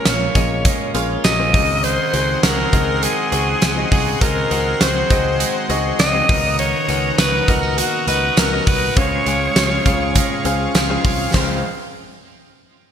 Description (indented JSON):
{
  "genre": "1980s-style pop",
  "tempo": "101 BPM",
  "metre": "4/4",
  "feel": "straight",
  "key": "Db major",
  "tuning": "A4 = 440 Hz",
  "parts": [
    { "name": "raspy alto saxophone", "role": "melody", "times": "0.0-10.8 s", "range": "Gb4 to Eb5", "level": "-20 LUFS", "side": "equal", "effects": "digital delay" },
    { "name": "clear concert grand piano", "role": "accompaniment", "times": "0.0-11.6 s", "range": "Db2 to Ab5", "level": "-24 LUFS", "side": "left 4 dB", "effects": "none" },
    { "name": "twelve-string electric guitar", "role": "riff", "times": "0.0-11.6 s", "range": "Eb3 to Gb4", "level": "-26 LUFS", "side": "right 7 dB", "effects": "lush chorus, digital delay" },
    { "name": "picked electric bass", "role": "bass", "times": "0.1-11.6 s", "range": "Bb1 to Db2", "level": "-23 LUFS", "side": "equal", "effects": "none" },
    { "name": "big rock drum kit", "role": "drums", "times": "0.1-11.5 s", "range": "hi-hat, kick drum, snare drum, splash cymbal, tambourine", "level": "-19 LUFS", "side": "right 1 dB", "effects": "gated reverb" },
    { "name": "pipe organ, strings celeste", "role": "sustained chords", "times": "1.8-11.6 s", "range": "Db3 to Db6", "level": "-26 LUFS", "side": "left 1 dB", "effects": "none" }
  ],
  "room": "moderate lush hall reverb, RT60 1.6 s, small room ambience",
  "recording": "bright 1980s-style digital production",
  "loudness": "-15 LUFS",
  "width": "side -8 dB against mid",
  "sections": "0.0-11.3 A section; 11.3-12.9 B section",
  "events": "none",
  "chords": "0.0 Bbm7; 1.5 Ab7/Db; 6.3 Cbmaj7/Db; 9.0 Dbmaj7"
}